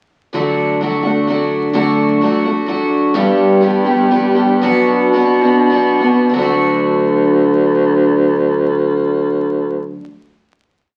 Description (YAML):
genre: acoustic folk duo or small band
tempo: 92-128 BPM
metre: 3/4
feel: straight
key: D major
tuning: A4 = 439 Hz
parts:
  - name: picked twelve-string acoustic guitar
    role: accompaniment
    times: 0.3-10.1 s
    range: G2 to G4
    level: -16 LUFS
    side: equal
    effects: none
  - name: warm baritone saxophone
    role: bass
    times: 3.1-10.0 s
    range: D2 to B2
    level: -17 LUFS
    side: equal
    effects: none
room: wet studio reverb, RT60 0.7 s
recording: very old 78 rpm record, vinyl crackle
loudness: -14 LUFS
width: mono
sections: 0.3-6.3 interlude; 6.3-10.2 final chord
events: slowing down 3.2-6.3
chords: 0.3 D; 3.2 G; 4.6 Bm; 6.3 D